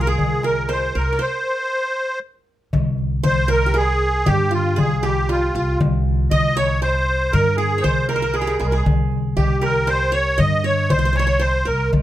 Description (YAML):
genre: Arabic maqam ensemble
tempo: 118 BPM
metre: 3/4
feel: straight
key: C maqam kurd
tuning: A4 = 441 Hz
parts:
  - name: musette accordion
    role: melody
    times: 0.0-11.9 s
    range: F4 to Eb5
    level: -20 LUFS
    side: equal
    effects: none
  - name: qanun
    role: second line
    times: 0.0-12.0 s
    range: F4 to Eb5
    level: -26 LUFS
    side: right 3 dB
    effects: none
  - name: upright bass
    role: bass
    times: 0.0-12.0 s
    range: C2 to G2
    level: -21 LUFS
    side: equal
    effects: none
  - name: darbuka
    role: percussion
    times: 0.2-12.0 s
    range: none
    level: -23 LUFS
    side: left 2 dB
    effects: none
room: little or no reverb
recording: close, detailed microphones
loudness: -17 LUFS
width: side -13 dB against mid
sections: 0.0-2.7 A section; 2.7-12.0 B section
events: break 1.2-2.7; drum fill 8.3-8.9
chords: none